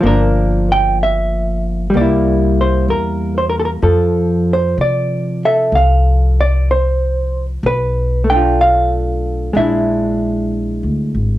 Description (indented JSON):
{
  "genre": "jazz ballad",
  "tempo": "63 BPM",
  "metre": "4/4",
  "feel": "swing 68% on 8ths",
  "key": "unclear",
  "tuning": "A4 = 440 Hz",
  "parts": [
    { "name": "hollow-body jazz guitar", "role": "accompaniment", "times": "0.0-11.4 s", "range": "F3 to G5", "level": "-15 LUFS", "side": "right 1 dB", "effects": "cassette tape" },
    { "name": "upright bass", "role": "bass", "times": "0.0-11.4 s", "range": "G1 to C3", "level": "-17 LUFS", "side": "equal", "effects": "none" }
  ],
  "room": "moderate small room reverb, RT60 0.5 s",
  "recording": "home recording on cassette",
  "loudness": "-13 LUFS",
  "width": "side -14 dB against mid",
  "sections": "0.0-11.4 A section",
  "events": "none",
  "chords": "0.0 Gm7; 1.9 C7; 3.8 F; 7.6 Bm7b5; 9.5 Bb7#11",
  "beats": "| 0.01 0.97 1.93 2.88 | 3.83 4.78 5.73 6.69 | 7.64 8.59 9.55 10.51"
}